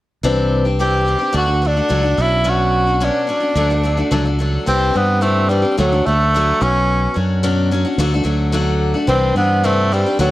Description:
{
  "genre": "folk rock and heartland rock",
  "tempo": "109 BPM",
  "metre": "4/4",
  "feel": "straight",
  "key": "unclear",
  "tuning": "A4 = 439 Hz",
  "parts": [
    { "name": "picked steel-string acoustic guitar", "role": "accompaniment", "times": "0.2-10.3 s", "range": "B2 to G4", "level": "-20 LUFS", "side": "left 2 dB", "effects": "none" },
    { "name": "fingered electric bass", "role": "bass", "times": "0.2-10.3 s", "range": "B1 to G2", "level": "-18 LUFS", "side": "equal", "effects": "none" },
    { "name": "breathy tenor saxophone", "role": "melody", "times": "0.8-10.3 s", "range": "F#3 to G4", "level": "-17 LUFS", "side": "right 1 dB", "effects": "slapback echo" }
  ],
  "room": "light reverb, small room reverb",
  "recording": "worn, warbling old tape, cassette tape, warbly pitch drift",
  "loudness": "-14 LUFS",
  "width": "side -16 dB against mid",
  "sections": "0.2-4.7 A section; 4.7-10.3 B section",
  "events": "none",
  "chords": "0.2 Cadd9; 1.4 D; 2.2 Bmadd9; 3.6 D; 4.7 Cadd9; 5.8 D; 6.6 Bmadd9; 8.0 D; 9.1 Cadd9",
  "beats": "| 0.24 0.80 1.35 1.91 | 2.46 3.01 3.57 4.12 | 4.67 5.22 5.78 6.33 | 6.88 7.43 7.98 8.54 | 9.09 9.64 10.19"
}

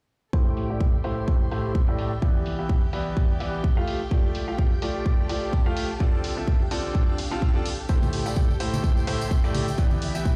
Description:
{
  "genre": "piano house",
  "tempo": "127 BPM",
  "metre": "4/4",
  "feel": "swing 55% on 16ths",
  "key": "A minor",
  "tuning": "A4 = 439 Hz",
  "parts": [
    { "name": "string machine, violins", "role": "sustained chords", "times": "0.3-10.4 s", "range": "G4 to G5", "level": "-40 LUFS", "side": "equal", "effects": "ensemble chorus, sidechain pumping" },
    { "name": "bright grand piano", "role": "riff", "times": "0.3-10.4 s", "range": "A2 to F5", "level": "-31 LUFS", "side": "equal", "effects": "sidechain pumping, low-pass filter" },
    { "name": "electronic kick drum", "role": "drums", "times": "0.3-10.4 s", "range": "none", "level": "-25 LUFS", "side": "equal", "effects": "small room ambience" },
    { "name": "warm symphonic string section", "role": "texture", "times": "0.3-10.4 s", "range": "D4 to C6", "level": "-45 LUFS", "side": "equal", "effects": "none" },
    { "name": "electronic hi-hat", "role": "drums", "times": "0.6-10.1 s", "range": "none", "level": "-40 LUFS", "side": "equal", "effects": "low-pass filter on hats, small room ambience" },
    { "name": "tambourine and congas", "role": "percussion", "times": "7.9-10.4 s", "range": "none", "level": "-34 LUFS", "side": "equal", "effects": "none" }
  ],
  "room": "small room ambience",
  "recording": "played on a big sound system in a bare room, large studio reverb",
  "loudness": "-24 LUFS",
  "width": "mono",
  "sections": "0.3-10.4 A section",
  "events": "filter sweep on grand piano 0.3-10.4",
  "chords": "0.3 Am7; 2.2 Em7; 3.9 F69; 6.0 Dm7; 7.9 Am7; 9.8 Em7",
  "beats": "| 0.33 0.81 1.28 1.75 | 2.22 2.70 3.17 3.64 | 4.11 4.59 5.06 5.53 | 6.00 6.48 6.95 7.42 | 7.89 8.37 8.84 9.31 | 9.78 10.26"
}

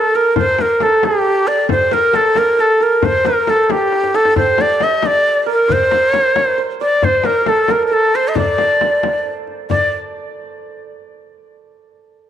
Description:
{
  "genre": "Persian modal ensemble",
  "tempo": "90 BPM (dotted quarters)",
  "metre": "6/8",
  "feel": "straight",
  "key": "D dastgah shur",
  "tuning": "A4 = 440 Hz",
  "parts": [
    { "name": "breathy bright ney", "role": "melody", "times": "0.0-9.9 s", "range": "G4 to Eb5+49c", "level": "-13 LUFS", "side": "equal", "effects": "slapback echo" },
    { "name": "santur", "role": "second line", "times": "0.0-10.8 s", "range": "D4 to Eb5+45c", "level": "-22 LUFS", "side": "right 10 dB", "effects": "none" },
    { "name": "frame drum", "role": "percussion", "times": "0.4-9.9 s", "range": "none", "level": "-23 LUFS", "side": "left 9 dB", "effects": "none" },
    { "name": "tombak", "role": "percussion", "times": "0.4-9.9 s", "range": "none", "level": "-25 LUFS", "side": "left 5 dB", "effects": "none" }
  ],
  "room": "moderate plate reverb, RT60 3.5 s",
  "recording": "1960s-style stereo with parts hard left and right",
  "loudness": "-12 LUFS",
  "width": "side -10 dB against mid",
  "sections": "0.0-9.7 A section; 9.7-11.0 B section",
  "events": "drum fill 3.9-4.4",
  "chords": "none",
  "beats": "| 0.36 1.03 | 1.69 2.36 | 3.03 3.69 | 4.36 5.03 | 5.70 6.36 | 7.03 7.70 | 8.36 9.03 | 9.70 10.36"
}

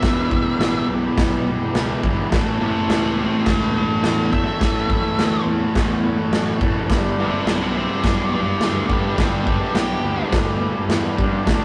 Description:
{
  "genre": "garage rock duo or trio",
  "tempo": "105 BPM",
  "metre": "4/4",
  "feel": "straight",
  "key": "unclear",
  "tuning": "A4 = 440 Hz",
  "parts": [
    { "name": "octave-fuzz lead guitar", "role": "melody", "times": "0.0-10.3 s", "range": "D4 to G5", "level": "-27 LUFS", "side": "equal", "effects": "distortion" },
    { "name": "overdriven combo organ", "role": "sustained chords", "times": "0.0-11.6 s", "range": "D4 to C#5", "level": "-33 LUFS", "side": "equal", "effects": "none" },
    { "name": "fuzz guitar", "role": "riff", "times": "0.0-11.6 s", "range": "E2 to D4", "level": "-25 LUFS", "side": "equal", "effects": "distortion" },
    { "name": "fuzz fingered electric bass", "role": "bass", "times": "0.0-11.6 s", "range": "E1 to G2", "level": "-29 LUFS", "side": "equal", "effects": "overdrive" },
    { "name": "raw garage drum kit", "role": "drums", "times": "0.0-11.6 s", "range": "crash cymbal, kick drum, snare drum", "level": "-24 LUFS", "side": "equal", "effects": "none" }
  ],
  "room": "moderate stone room reverb, RT60 0.9 s",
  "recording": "rough rehearsal-room recording, tube saturation",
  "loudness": "-20 LUFS",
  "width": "mono",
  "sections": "0.0-11.6 A section",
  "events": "none",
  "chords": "0.0 Em; 2.3 A; 6.9 G",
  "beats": "| 0.02 0.60 1.17 1.75 | 2.32 2.89 3.47 4.04 | 4.61 5.18 5.76 6.33 | 6.90 7.47 8.04 8.61 | 9.18 9.75 10.32 10.89 | 11.46"
}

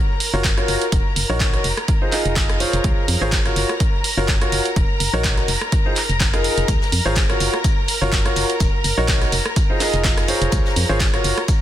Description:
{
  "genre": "piano house",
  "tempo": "125 BPM",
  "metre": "4/4",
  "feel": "swing 55% on 16ths",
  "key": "unclear",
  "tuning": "A4 = 441 Hz",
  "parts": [
    { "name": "rich studio string section", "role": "sustained chords", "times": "0.0-11.6 s", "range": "Bb4 to Bb5", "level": "-27 LUFS", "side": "left 2 dB", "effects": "sidechain pumping" },
    { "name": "punchy analog drum machine", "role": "drums", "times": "0.2-11.6 s", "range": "handclaps, hi-hat, rim click", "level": "-23 LUFS", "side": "right 2 dB", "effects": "none" },
    { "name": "clear concert grand piano", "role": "riff", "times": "0.3-11.4 s", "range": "Eb4 to Eb5", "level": "-23 LUFS", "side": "equal", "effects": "sidechain pumping, low-pass filter, ping-pong delay" },
    { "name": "organ-like FM bass", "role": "bass", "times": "0.3-11.3 s", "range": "Eb1 to F2", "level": "-23 LUFS", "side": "equal", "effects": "sidechain pumping" },
    { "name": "electronic kick drum", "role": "drums", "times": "0.4-11.6 s", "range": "none", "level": "-20 LUFS", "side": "equal", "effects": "none" },
    { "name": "jazz brush drum kit", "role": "drums", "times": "6.7-11.6 s", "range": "hi-hat, shaker, snare drum", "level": "-32 LUFS", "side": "left 3 dB", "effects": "none" }
  ],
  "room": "light reverb, studio ambience",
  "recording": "dense, heavily limited modern master",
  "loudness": "-16 LUFS",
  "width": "side -12 dB against mid",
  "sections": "0.0-11.6 A section",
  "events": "none",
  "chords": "0.0 Gbmaj7; 0.9 Ebm7; 1.6 Fm7; 2.8 Dbmaj7; 3.6 Gbmaj7; 4.8 Ebm7; 5.5 Fm7; 6.7 Dbmaj7; 7.4 Gbmaj7; 8.6 Ebm7; 9.3 Fm7; 10.5 Dbmaj7",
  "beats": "0.44 | 0.92 1.40 1.88 2.36 | 2.84 3.32 3.80 4.28 | 4.76 5.24 5.72 6.20 | 6.68 7.16 7.64 8.12 | 8.60 9.08 9.56 10.04 | 10.52 11.00 11.48"
}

